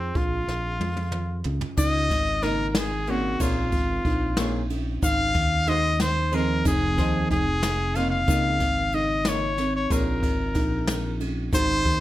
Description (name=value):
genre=progressive instrumental, band music in an uneven meter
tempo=185 BPM (eighths)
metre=5/8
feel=straight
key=unclear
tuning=A4 = 440 Hz
part: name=bright trumpet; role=melody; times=0.0-12.0 s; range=C4 to F5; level=-26 LUFS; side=left 1 dB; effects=none
part: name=kalimba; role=arpeggios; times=0.0-12.0 s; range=C4 to F4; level=-29 LUFS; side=right 1 dB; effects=digital delay
part: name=fingered electric bass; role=bass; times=0.0-12.0 s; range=F1 to F2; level=-28 LUFS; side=equal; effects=none
part: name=jazz brush drum kit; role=drums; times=0.2-12.0 s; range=crash cymbal, hi-hat, kick drum, ride cymbal, snare drum, toms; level=-28 LUFS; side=equal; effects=none
part: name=tube shaker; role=percussion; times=1.8-11.8 s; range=none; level=-38 LUFS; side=left 7 dB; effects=none
part: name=archtop guitar, miked and amplified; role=accompaniment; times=2.4-12.0 s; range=Bb2 to Eb5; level=-31 LUFS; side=equal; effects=none
room=light reverb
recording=none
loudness=-22 LUFS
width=side -14 dB against mid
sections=0.0-1.8 A section; 1.8-12.0 B section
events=drum fill 0.5-1.8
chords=0.2 Bbm; 1.8 Db69; 3.4 Bbm7; 5.0 Ab7; 6.7 Fm7; 8.3 Db69; 9.9 Bbm7